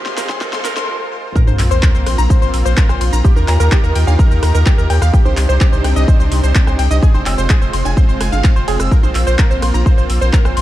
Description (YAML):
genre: progressive house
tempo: 127 BPM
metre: 4/4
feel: straight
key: Bb mixolydian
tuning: A4 = 445 Hz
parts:
  - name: supersaw pad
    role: sustained chords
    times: 0.0-10.6 s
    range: F2 to C5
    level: -23 LUFS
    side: equal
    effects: sidechain pumping
  - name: glassy wavetable pluck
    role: arpeggios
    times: 0.0-10.6 s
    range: G4 to Bb6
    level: -21 LUFS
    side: equal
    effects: chorus, sidechain pumping, digital delay
  - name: riser and sub drop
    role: sound effects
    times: 0.0-3.2 s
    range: none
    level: -23 LUFS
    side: equal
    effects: none
  - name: deep house drum kit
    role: drums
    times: 0.1-10.6 s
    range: handclaps, hi-hat, ride cymbal, rim click, shaker, snare drum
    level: -24 LUFS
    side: equal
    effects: none
  - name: electronic kick drum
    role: drums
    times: 0.3-10.4 s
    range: none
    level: -12 LUFS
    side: equal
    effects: none
  - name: cowbell and congas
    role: percussion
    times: 0.3-10.5 s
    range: none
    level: -28 LUFS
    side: right 2 dB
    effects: sidechain pumping on perc
  - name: saturated sub bass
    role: bass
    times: 1.5-10.6 s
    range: F1 to Eb2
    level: -15 LUFS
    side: equal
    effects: sidechain pumping
room: light reverb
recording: dark, warm production, high-pass filter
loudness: -11 LUFS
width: side -14 dB against mid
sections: 0.0-1.4 A section; 1.4-10.6 B section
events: build-up 0.0-1.4; drum fill 0.0-0.9; riser 0.0-0.9; filter sweep on synth arpeggio sound 0.0-1.4; filter sweep 0.0-1.4; break 0.9-1.4; drop 1.4-10.6; impact 1.4-3.2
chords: 0.0 Fm; 1.4 Bbsus2; 3.2 Ebadd9; 5.1 Cmadd9; 7.0 Fm; 8.9 Bbsus2